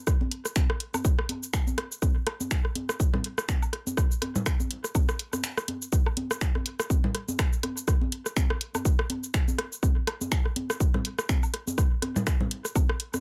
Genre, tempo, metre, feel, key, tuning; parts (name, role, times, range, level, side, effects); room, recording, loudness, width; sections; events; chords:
techno; 123 BPM; 4/4; swing 57% on 16ths
electronic kick drum; drums; 0.1-12.9 s; -27 LUFS; equal
house drum kit; drums; 0.1-13.2 s; finger snaps, hi-hat, shaker; -36 LUFS; equal
electronic rim click, congas and woodblock; percussion; 0.1-13.2 s; -34 LUFS; equal; overdrive, tape echo
little or no reverb; -28 LUFS; mono
0.0-13.2 A section
break 5.4-5.9